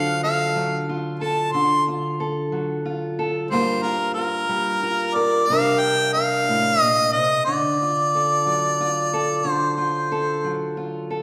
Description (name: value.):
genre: acoustic country blues, solo or duo.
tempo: 61 BPM (dotted quarters).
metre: 12/8.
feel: straight.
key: unclear.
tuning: A4 = 439 Hz.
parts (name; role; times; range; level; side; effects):
warm harmonica; melody; 0.0-10.7 s; Bb4 to C6; -23 LUFS; equal; none.
fingerpicked steel-string acoustic guitar; accompaniment; 0.0-11.2 s; G2 to Bb4; -26 LUFS; equal; none.
room: wet scoring stage reverb, RT60 2.0 s.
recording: recorded in a church or concert hall.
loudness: -22 LUFS.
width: mono.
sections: 0.0-11.2 A section.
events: none.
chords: 0.0 D7#9; 3.5 Gm7; 5.5 Csus2; 7.5 D.